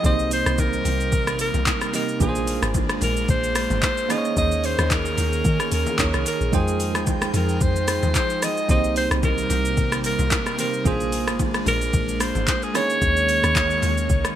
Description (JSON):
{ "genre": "amapiano", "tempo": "111 BPM", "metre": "4/4", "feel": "swing 55% on 16ths", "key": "unclear", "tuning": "A4 = 440 Hz", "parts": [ { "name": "breathy alto saxophone", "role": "melody", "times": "0.0-14.4 s", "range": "Ab4 to Eb5", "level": "-24 LUFS", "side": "equal", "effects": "ping-pong delay" }, { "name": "bell-like tine electric piano", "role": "accompaniment", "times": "0.0-14.4 s", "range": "Ab3 to G5", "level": "-28 LUFS", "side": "right 6 dB", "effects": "fast stereo tremolo" }, { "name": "airy breathy pad", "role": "sustained chords", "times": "0.0-14.4 s", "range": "C3 to G5", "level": "-29 LUFS", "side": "equal", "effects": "chorus" }, { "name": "deep log drum bass", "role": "bass", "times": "0.0-14.2 s", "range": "Ab1 to Eb3", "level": "-25 LUFS", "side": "equal", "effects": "none" }, { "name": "smooth R&B drum kit", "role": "drums", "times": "0.0-14.4 s", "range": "handclaps, hi-hat, kick drum, rim click, shaker", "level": "-24 LUFS", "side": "equal", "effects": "overdrive, gated reverb" }, { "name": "congas and bongos", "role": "percussion", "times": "0.0-14.2 s", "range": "none", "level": "-34 LUFS", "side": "left 8 dB", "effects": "none" } ], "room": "light reverb, digital ambience", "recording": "bright 1980s-style digital production", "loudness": "-19 LUFS", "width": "side -11 dB against mid", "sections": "0.0-14.4 A section", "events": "none", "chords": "0.0 Cm7; 2.2 Bb9; 4.1 Eb7sus4; 6.5 Fm9; 8.7 Cm7; 10.9 Bb9; 12.7 Eb7sus4", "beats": "| 0.04 0.58 1.12 1.67 | 2.21 2.75 3.29 3.83 | 4.37 4.91 5.45 5.99 | 6.53 7.07 7.61 8.15 | 8.69 9.23 9.77 10.31 | 10.86 11.39 11.94 12.48 | 13.02 13.56 14.10" }